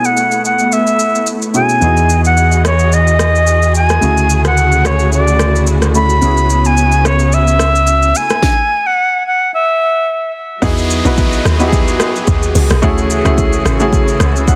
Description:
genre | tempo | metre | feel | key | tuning
amapiano | 109 BPM | 4/4 | swing 55% on 16ths | E major | A4 = 439 Hz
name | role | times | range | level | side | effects
bright reedy concert flute | melody | 0.0-10.3 s | C#5 to B5 | -16 LUFS | equal | low-pass filter, digital delay
clear concert grand piano | accompaniment | 0.0-14.6 s | B2 to F#5 | -21 LUFS | equal | low-pass filter
rich symphonic string section | sustained chords | 0.0-14.6 s | C#3 to D#5 | -22 LUFS | equal | low-pass filter
afro-pop drum kit | drums | 0.0-14.6 s | hi-hat, kick drum, rim click, shaker, snare drum | -19 LUFS | equal | overdrive
fingered electric bass | bass | 1.8-8.1 s | C#2 to E2 | -15 LUFS | equal | none
tight log drum bass | bass | 10.6-14.6 s | A1 to E2 | -17 LUFS | equal | none
downlifter | sound effects | 10.6-14.6 s | none | -28 LUFS | equal | none
room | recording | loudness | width
light reverb, digital ambience | dense, heavily limited modern master | -12 LUFS | mono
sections
0.0-10.6 A section; 10.6-14.6 B section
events
stop 8.4-10.6; drop 10.6-14.6; grand piano fill 14.2-14.6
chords
0.0 B13sus4; 1.8 Emaj9; 4.0 Dmaj9#11; 6.2 C#m7; 8.1 B7sus4; 10.6 Emaj9; 12.8 Dmaj9#11

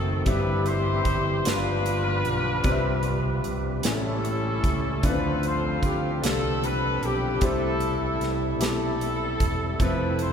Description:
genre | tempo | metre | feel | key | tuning
slow gospel | 50 BPM (dotted quarters) | 6/8 | straight | C major | A4 = 438 Hz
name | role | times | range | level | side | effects
warm horn section | melody | 0.0-10.3 s | C4 to C5 | -27 LUFS | left 1 dB | none
clear concert grand piano | accompaniment | 0.0-10.3 s | G2 to E5 | -30 LUFS | left 3 dB | none
percussive tonewheel organ | sustained chords | 0.0-10.3 s | D#3 to B4 | -33 LUFS | right 1 dB | slow rotary speaker, overdrive, chorus vibrato
fingered electric bass | bass | 0.0-10.3 s | E1 to D2 | -28 LUFS | equal | none
modern studio drum kit | drums | 0.3-10.3 s | hi-hat, kick drum, snare drum | -30 LUFS | right 1 dB | none
room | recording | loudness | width
wet cathedral reverb, RT60 5.2 s | recorded in a church or concert hall | -22 LUFS | side -7 dB against mid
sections
0.0-10.3 A section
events
none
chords
0.3 C/G; 1.5 G7; 2.6 Cmaj7; 3.8 A7; 5.0 Dm7; 7.4 C6; 9.8 Fmaj7

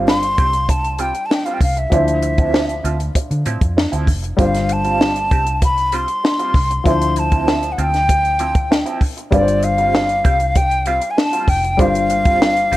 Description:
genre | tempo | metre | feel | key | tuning
lush 1970s-style soul | 97 BPM | 4/4 | straight | unclear | A4 = 440 Hz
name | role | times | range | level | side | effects
warm baby grand piano | accompaniment | 0.0-12.8 s | F3 to C5 | -24 LUFS | left 3 dB | none
electric guitar through a small old amp | riff | 0.0-12.8 s | F3 to G4 | -24 LUFS | right 6 dB | wah, tremolo
vintage muted fingered electric bass | bass | 0.0-12.8 s | F1 to D3 | -22 LUFS | equal | none
breathy jazz flute | melody | 0.1-12.8 s | D5 to C6 | -18 LUFS | left 1 dB | none
compact cocktail drum kit | drums | 0.1-12.8 s | hi-hat, kick drum, snare drum | -18 LUFS | equal | none
room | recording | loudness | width
light reverb, studio ambience | none | -14 LUFS | side -16 dB against mid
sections
0.0-12.8 A section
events
none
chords
0.0 G7sus4; 1.9 Dm9; 4.4 G7sus4; 6.9 Dm9; 9.3 G7sus4

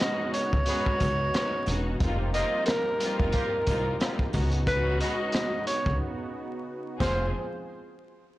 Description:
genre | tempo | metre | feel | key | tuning
hip hop, boom-bap hip-hop | 90 BPM | 4/4 | swing 57% on 16ths | unclear | A4 = 440 Hz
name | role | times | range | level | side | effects
breathy tenor saxophone | melody | 0.0-7.3 s | Bb4 to Eb5 | -29 LUFS | equal | high-pass filter, low-pass filter
warm symphonic string section | accompaniment | 0.0-7.3 s | F3 to Ab4 | -34 LUFS | left 2 dB | cassette tape, high-pass filter, low-pass filter
warm analog pad | sustained chords | 0.0-7.3 s | Db3 to C5 | -38 LUFS | right 1 dB | chorus, high-pass filter, low-pass filter
crunchy breakbeat drum kit | drums | 0.0-7.2 s | hi-hat, kick drum, rim click, snare drum | -30 LUFS | equal | none
sleigh bells | percussion | 0.0-7.3 s | none | -48 LUFS | right 5 dB | none
upright bass | bass | 0.5-7.3 s | E1 to Db2 | -29 LUFS | equal | tube saturation
clear horn section | stabs | 0.7-7.2 s | Ab3 to C5 | -39 LUFS | right 2 dB | high-pass filter, low-pass filter, digital delay
room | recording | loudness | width
light reverb, small room reverb | blown-out, overdriven recording, vinyl crackle, overdrive | -25 LUFS | side -17 dB against mid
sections
0.0-7.3 A section; 7.3-8.4 B section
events
break 6.0-7.3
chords
0.0 Db9sus4; 2.0 F9sus4; 4.3 Db9sus4; 7.0 Fm; 7.3 N.C.

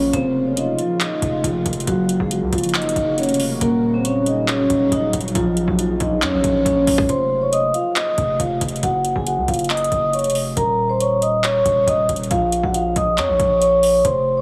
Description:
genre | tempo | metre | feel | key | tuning
hip hop, trap | 138 BPM | 4/4 | half-time | F phrygian | A4 = 440 Hz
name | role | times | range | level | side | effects
vibraphone with soft mallets | melody | 0.0-14.4 s | F3 to Eb6 | -20 LUFS | equal | none
deep dark ambient pad | sustained chords | 0.0-7.1 s | Db3 to Gb4 | -31 LUFS | equal | chorus, built-in reverb
distorted 808-style bass | bass | 0.0-14.4 s | Eb1 to F2 | -26 LUFS | equal | distortion
trap drum kit | drums | 0.1-14.1 s | handclaps, hi-hat, kick drum | -28 LUFS | equal | overdrive
room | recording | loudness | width
little or no reverb | heavily compressed radio sound, multiband compression, small room ambience | -19 LUFS | mono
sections
0.0-7.1 A section; 7.1-14.4 B section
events
drum fill 6.7-7.1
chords
0.1 Fm7; 1.9 Gb; 3.6 Ebm7; 5.4 Bbm; 7.1 F5; 8.8 Gb5; 10.6 Eb5; 12.3 Bbm

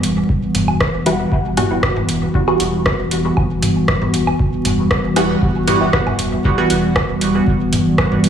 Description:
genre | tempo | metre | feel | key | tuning
dub techno | 117 BPM | 4/4 | straight | E minor | A4 = 438 Hz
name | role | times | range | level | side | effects
warbly tape-like pad | sustained chords | 0.0-8.3 s | E3 to F#4 | -18 LUFS | equal | chorus, built-in reverb, sidechain pumping
soft dub sub bass | bass | 0.0-8.3 s | D1 to E1 | -25 LUFS | equal | sidechain pumping
booming analog drum machine | drums | 0.0-8.3 s | hi-hat, rim click | -21 LUFS | equal | dub echo
electronic kick drum | drums | 0.3-8.1 s | none | -20 LUFS | equal | none
electronic toms and woodblock | percussion | 0.5-8.2 s | none | -24 LUFS | right 1 dB | sidechain pumping on toms, sidechain pumping on perc, dub echo
filtered dub chord stab | riff | 1.1-1.8, 5.2-5.9 s | E4 to F#5 | -25 LUFS | left 1 dB | phaser, ensemble chorus, sidechain pumping, dub echo
filtered dub chord stab | stabs | 1.1-6.7 s | E3 to F#4 | -21 LUFS | right 2 dB | phaser, sidechain pumping, dub echo
room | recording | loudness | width
moderate lush hall reverb, RT60 1.8 s | vinyl crackle, studio reverb | -14 LUFS | side -8 dB against mid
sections
0.0-8.3 A section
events
none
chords
0.0 Emadd9

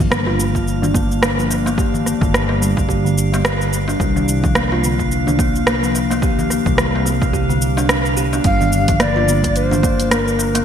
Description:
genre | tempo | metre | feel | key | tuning
organic downtempo | 108 BPM | 4/4 | swing 58% on 16ths | G minor pentatonic | A4 = 438 Hz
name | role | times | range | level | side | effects
kalimba | arpeggios | 0.0-10.6 s | D3 to G4 | -20 LUFS | left 1 dB | low-pass filter, ping-pong delay
fretless electric bass | bass | 0.0-10.6 s | G1 to C2 | -20 LUFS | equal | analog chorus, sidechain pumping
deep house drum kit | drums | 0.0-10.6 s | hi-hat, rim click, shaker | -22 LUFS | right 1 dB | overdrive, gated reverb
darbuka | percussion | 0.0-10.6 s | none | -28 LUFS | left 2 dB | none
drifting glass-harmonics texture | texture | 0.1-10.6 s | D4 to F5 | -27 LUFS | right 2 dB | chorus, built-in reverb
electronic kick drum | drums | 0.5-10.0 s | none | -20 LUFS | equal | overdrive
Native American-style cedar flute | melody | 8.5-10.6 s | Bb4 to F5 | -20 LUFS | left 1 dB | digital delay
room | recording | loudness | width
moderate lush hall reverb, RT60 2.1 s | bright 1980s-style digital production | -14 LUFS | side -8 dB against mid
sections
0.0-10.6 A section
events
filter sweep on kalimba 0.0-10.6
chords
0.0 Gm7; 4.0 C5; 8.4 Gm7

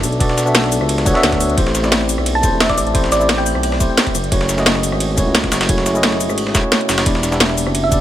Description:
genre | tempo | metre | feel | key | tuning
liquid drum and bass | 175 BPM | 4/4 | straight | unclear | A4 = 440 Hz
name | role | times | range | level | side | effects
tine electric piano | accompaniment | 0.0-8.0 s | A3 to E5 | -19 LUFS | equal | ping-pong delay
smooth synth bass | bass | 0.0-8.0 s | E1 to D2 | -20 LUFS | equal | none
breakbeat sampler-style drum kit | drums | 0.0-8.0 s | ride cymbal, snare drum | -22 LUFS | right 1 dB | high-pass filter on cymbals, high-pass filter on snare
drum and bass drum kit | drums | 0.0-8.0 s | hi-hat, rim click, shaker, snare drum | -19 LUFS | left 1 dB | none
electronic kick drum | drums | 0.2-8.0 s | none | -20 LUFS | equal | none
thumb-piano-like synth pluck | melody | 2.4-3.9, 7.8-8.0 s | D5 to A5 | -22 LUFS | equal | chorus, ping-pong delay
room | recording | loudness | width
light reverb | none | -13 LUFS | side -12 dB against mid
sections
0.0-8.0 A section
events
kick drops out 6.7-7.1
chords
0.0 Bm7; 1.6 Am7; 4.1 F#m7; 7.1 Em7

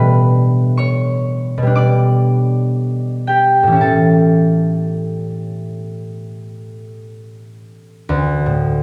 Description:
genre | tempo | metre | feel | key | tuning
classical, solo harp piece | 55-62 BPM | 4/4 | rubato | unclear | A4 = 440 Hz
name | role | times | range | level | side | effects
concert harp | solo | 0.0-8.8 s | D2 to D6 | -16 LUFS | equal | none
room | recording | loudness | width
wet recital hall reverb, RT60 1.5 s | recorded in a church or concert hall | -15 LUFS | mono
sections
0.0-8.1 A section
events
none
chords
0.0 G/B; 3.8 A; 8.1 D5

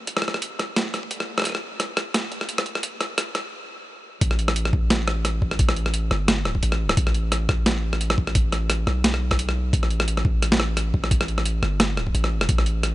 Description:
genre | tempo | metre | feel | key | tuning
half-time drum and bass | 174 BPM | 4/4 | swing 55% on 16ths, half-time | A minor | A4 = 440 Hz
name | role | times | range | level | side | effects
long sustained 808-style bass | bass | 0.0-12.9 s | G1 to C2 | -24 LUFS | equal | high-pass filter
boom bap sampler-style drum kit | drums | 0.1-12.9 s | hi-hat, rim click, snare drum | -24 LUFS | equal | overdrive
electronic kick drum | drums | 0.1-12.6 s | none | -22 LUFS | equal | overdrive, high-pass filter on kick, high-pass filter on room
room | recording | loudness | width
little or no reverb | high-pass filter, nothing above 10.6 kHz | -20 LUFS | side -17 dB against mid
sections
0.0-4.2 A section; 4.2-12.9 B section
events
build-up 0.0-4.2; stop 3.5-4.2; drop 4.2-12.9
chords
none

